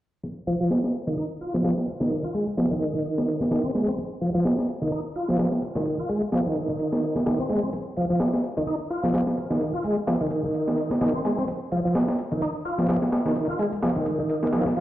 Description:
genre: breakbeat, breaks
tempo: 128 BPM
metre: 4/4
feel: swing 56% on 16ths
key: F minor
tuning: A4 = 439 Hz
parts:
  - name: breakbeat sampler-style drum kit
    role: drums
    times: 0.2-14.8 s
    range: hi-hat, kick drum, snare drum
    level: -26 LUFS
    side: equal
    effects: high-pass filter on hats, studio reverb, high-pass filter on kick, high-pass filter on snare
  - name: overdriven tonewheel organ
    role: riff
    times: 0.5-14.8 s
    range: Eb3 to F4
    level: -25 LUFS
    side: equal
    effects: chorus vibrato, fast rotary speaker, tube saturation, vintage 12-bit sampler grit, low-pass filter, tape echo
room: wet small room reverb, RT60 0.5 s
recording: played on a big sound system in a bare room, large studio reverb, low-pass filter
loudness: -23 LUFS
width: side -14 dB against mid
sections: 0.2-14.8 A section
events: filter sweep on tonewheel organ 0.2-14.8; filter sweep 0.2-14.8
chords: 0.2 Fm

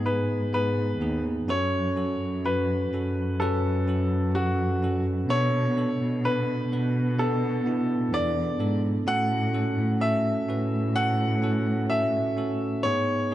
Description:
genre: pop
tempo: 63 BPM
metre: 4/4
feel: straight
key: F# minor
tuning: A4 = 440 Hz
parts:
  - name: bell-like tine electric piano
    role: accompaniment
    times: 0.0-13.3 s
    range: G#2 to B4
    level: -28 LUFS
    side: right 2 dB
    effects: none
  - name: dark chamber cello section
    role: bass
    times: 0.0-12.8 s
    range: D#2 to B2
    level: -27 LUFS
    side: equal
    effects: none
  - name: clear grand piano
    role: melody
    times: 0.1-13.3 s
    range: F#4 to F#5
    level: -28 LUFS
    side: left 1 dB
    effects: tape echo
room: light reverb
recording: none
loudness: -23 LUFS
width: side -13 dB against mid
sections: 0.0-13.3 A section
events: none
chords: 0.0 G#m; 1.5 F#m; 5.3 Bm7; 9.1 F#m/A; 12.8 G#m

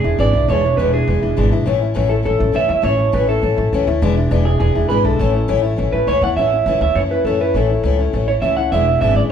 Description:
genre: rock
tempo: 204 BPM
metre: 4/4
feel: straight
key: A major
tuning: A4 = 440 Hz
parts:
  - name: electric guitar through a small old amp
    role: melody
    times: 0.0-9.3 s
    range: G#4 to F#5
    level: -18 LUFS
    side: right 3 dB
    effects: none
  - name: picked steel-string acoustic guitar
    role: accompaniment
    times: 0.0-9.3 s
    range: E2 to E4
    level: -20 LUFS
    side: left 6 dB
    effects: none
  - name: upright bass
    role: bass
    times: 0.0-9.3 s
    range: E1 to F#2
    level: -18 LUFS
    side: equal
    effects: none
room: moderate large studio reverb, RT60 1.2 s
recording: band playing live in one room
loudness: -14 LUFS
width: side -8 dB against mid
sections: 0.0-6.4 A section; 6.4-9.3 B section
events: none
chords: 0.0 E7; 1.7 A; 4.0 E7; 5.2 A; 8.7 E7

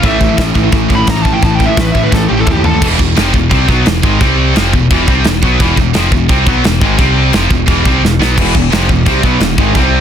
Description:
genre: heavy metal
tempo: 173 BPM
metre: 4/4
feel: straight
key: unclear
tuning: A4 = 440 Hz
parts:
  - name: high-gain lead guitar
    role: melody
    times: 0.0-2.8 s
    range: G4 to B5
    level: -18 LUFS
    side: left 1 dB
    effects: distortion, digital delay
  - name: fuzz guitar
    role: riff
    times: 0.0-2.8, 8.4-10.0 s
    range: E2 to C4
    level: -18 LUFS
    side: left 1 dB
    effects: distortion
  - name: high-gain distorted guitar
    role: riff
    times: 0.0-10.0 s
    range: E2 to C4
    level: -16 LUFS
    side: left 12 dB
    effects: distortion
  - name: scooped high-gain guitar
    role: riff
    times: 0.0-10.0 s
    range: E2 to C4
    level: -16 LUFS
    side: right 13 dB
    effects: distortion
  - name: growling picked electric bass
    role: bass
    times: 0.0-10.0 s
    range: E1 to D#2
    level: -15 LUFS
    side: equal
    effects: overdrive
  - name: modern studio drum kit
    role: drums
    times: 0.0-9.8 s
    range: china cymbal, crash cymbal, kick drum, snare drum, toms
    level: -13 LUFS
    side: equal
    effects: none
room: little or no reverb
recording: dense, heavily limited modern master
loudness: -8 LUFS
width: side -9 dB against mid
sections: 0.0-2.8 A section; 2.8-10.0 B section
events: lead electric guitar solo 0.0-2.8; drum fill 2.1-2.8, 8.0-8.4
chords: 0.0 A5; 2.8 E; 4.2 C5; 4.6 E; 7.0 C5; 7.3 E

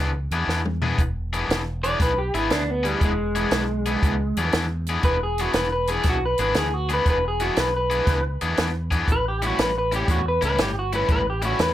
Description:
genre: electric blues shuffle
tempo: 119 BPM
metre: 4/4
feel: swing 67% on 8ths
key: E mixolydian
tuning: A4 = 440 Hz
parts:
  - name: cranked stack guitar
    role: riff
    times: 0.0-11.7 s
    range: A2 to G#4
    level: -26 LUFS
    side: left 3 dB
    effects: overdrive
  - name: fingered electric bass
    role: bass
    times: 0.0-11.7 s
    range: E1 to E2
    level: -27 LUFS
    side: equal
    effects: none
  - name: compact cocktail drum kit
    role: drums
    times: 0.3-11.7 s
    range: hi-hat, kick drum, snare drum, toms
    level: -24 LUFS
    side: equal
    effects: none
  - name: electric guitar through a small old amp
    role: melody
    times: 1.8-11.7 s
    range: G3 to D5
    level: -24 LUFS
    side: equal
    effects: none
room: light reverb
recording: none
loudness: -20 LUFS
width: side -12 dB against mid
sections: 1.0-11.7 A section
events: drum fill 0.5-1.0; clean electric guitar solo 1.0-11.7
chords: 0.0 E7; 9.1 A7

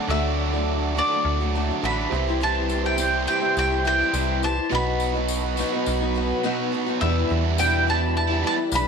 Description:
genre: folk rock and heartland rock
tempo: 104 BPM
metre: 4/4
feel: straight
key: E minor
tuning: A4 = 440 Hz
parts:
  - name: bowl-back mandolin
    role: melody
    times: 0.0-8.9 s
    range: D5 to B5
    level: -25 LUFS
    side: right 1 dB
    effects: none
  - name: picked old ladder-braced acoustic guitar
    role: accompaniment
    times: 0.0-8.9 s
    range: E2 to G4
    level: -28 LUFS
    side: left 11 dB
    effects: none
  - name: dark studio string section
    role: sustained chords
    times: 0.0-8.9 s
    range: F#4 to D6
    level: -33 LUFS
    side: left 2 dB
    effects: none
  - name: overdriven electric guitar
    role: riff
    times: 0.0-8.6 s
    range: E2 to G4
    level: -28 LUFS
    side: right 11 dB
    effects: none
  - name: overdriven reed electric piano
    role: accompaniment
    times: 0.1-8.9 s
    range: E4 to E5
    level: -32 LUFS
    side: right 10 dB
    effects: fast tremolo
  - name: metallic FM bass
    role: bass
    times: 0.1-8.9 s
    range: A1 to E2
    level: -26 LUFS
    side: equal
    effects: none
  - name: tambourine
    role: percussion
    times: 2.4-8.9 s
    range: none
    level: -36 LUFS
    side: left 15 dB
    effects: none
room: moderate echo chamber reverb, RT60 2.3 s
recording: 1960s-style stereo with parts hard left and right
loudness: -20 LUFS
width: side -6 dB against mid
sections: 0.0-7.0 A section; 7.0-8.9 B section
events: none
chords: 0.0 D; 2.1 C; 4.7 B; 7.0 Em7

